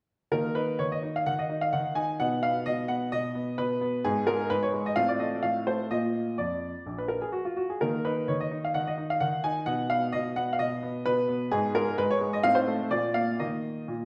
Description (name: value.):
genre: classical-period piano sonatina.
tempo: 129 BPM.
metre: 4/4.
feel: straight.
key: Eb minor.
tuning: A4 = 440 Hz.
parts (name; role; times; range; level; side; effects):
bright baby grand piano; solo; 0.3-14.1 s; Bb1 to Ab5; -28 LUFS; equal; none.
room: wet stone room reverb, RT60 1.3 s.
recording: dark, warm production.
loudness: -28 LUFS.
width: mono.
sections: 0.3-14.1 A section.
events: none.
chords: 0.3 Eb5; 2.2 B; 4.0 Abmadd9; 5.0 F/A; 5.9 Bb; 7.8 Eb5; 9.7 B; 11.5 Abmadd9; 12.4 Adim; 12.9 Bb; 13.4 Eb5.